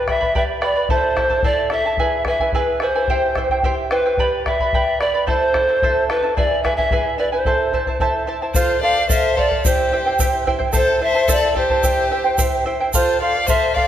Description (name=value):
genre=andean folk, Andean ensemble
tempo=110 BPM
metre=2/4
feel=straight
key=A minor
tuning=A4 = 440 Hz
part: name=breathy bright pan flute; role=melody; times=0.0-13.9 s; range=B4 to F5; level=-19 LUFS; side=equal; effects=none
part: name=charango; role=accompaniment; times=0.0-13.9 s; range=E4 to B5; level=-21 LUFS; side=right 2 dB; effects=none
part: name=bombo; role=percussion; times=0.1-13.9 s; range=none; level=-23 LUFS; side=left 2 dB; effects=none
part: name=clear violin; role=second line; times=8.5-13.9 s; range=F4 to D5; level=-24 LUFS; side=left 5 dB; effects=none
part: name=tube shaker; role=percussion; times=8.6-13.6 s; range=none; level=-27 LUFS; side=right 6 dB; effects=none
room=wet scoring stage reverb, RT60 2.0 s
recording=none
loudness=-16 LUFS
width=side -10 dB against mid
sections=0.0-8.6 A section; 8.6-13.9 B section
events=none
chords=0.0 G; 0.9 Am; 2.0 E; 3.1 C; 4.2 G; 5.3 Am; 6.4 E; 7.5 Am; 8.6 F; 9.6 C; 10.7 Am; 11.8 C; 12.9 F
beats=0.35 | 0.90 1.44 | 1.99 2.54 | 3.08 3.63 | 4.18 4.72 | 5.27 5.82 | 6.37 6.91 | 7.46 8.01 | 8.55 9.10 | 9.65 10.20 | 10.74 11.29 | 11.84 12.38 | 12.93 13.48